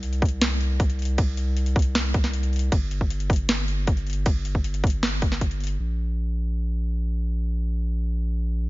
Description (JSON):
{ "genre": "future bass", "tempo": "156 BPM", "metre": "4/4", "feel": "half-time", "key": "unclear", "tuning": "A4 = 440 Hz", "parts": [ { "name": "saturated sub bass", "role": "bass", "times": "0.0-8.7 s", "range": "G1 to C2", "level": "-25 LUFS", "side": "equal", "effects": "sidechain pumping" }, { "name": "trap drum kit", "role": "drums", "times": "0.0-5.7 s", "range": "hi-hat, ride cymbal, snare drum", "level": "-28 LUFS", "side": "equal", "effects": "overdrive" }, { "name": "electronic kick drum", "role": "drums", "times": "0.2-5.5 s", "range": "none", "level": "-22 LUFS", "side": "equal", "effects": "overdrive" } ], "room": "digital ambience", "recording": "nothing above 7.5 kHz", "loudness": "-22 LUFS", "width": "side -20 dB against mid", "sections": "0.0-5.8 A section; 5.8-8.7 B section", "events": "drop 0.0-5.8", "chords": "none" }